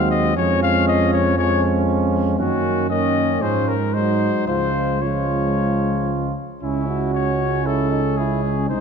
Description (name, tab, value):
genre	classical, brass quintet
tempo	115 BPM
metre	4/4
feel	uneven beats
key	Db major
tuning	A4 = 439 Hz
part	warm trumpet	melody	0.0-8.8 s	E4 to F5	-23 LUFS	left 7 dB	none
part	warm flugelhorn	second line	0.0-8.8 s	C4 to F4	-25 LUFS	right 8 dB	none
part	bright trombone	accompaniment	0.0-8.8 s	Eb3 to F#4	-27 LUFS	right 3 dB	none
part	mellow French horn	accompaniment	0.0-8.8 s	Ab3 to Bb3	-25 LUFS	left 6 dB	none
part	dark tuba	bass	0.0-8.8 s	B#1 to Ab2	-22 LUFS	right 3 dB	none
room	wet scoring stage reverb, RT60 1.9 s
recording	dark, warm production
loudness	-17 LUFS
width	side -6 dB against mid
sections	0.0-6.6 A section; 6.6-8.8 B section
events	none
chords	0.4 Db/F; 2.4 Ebm7/Gb; 3.4 Db/Ab; 3.9 Ab7; 4.5 Db; 6.6 C#m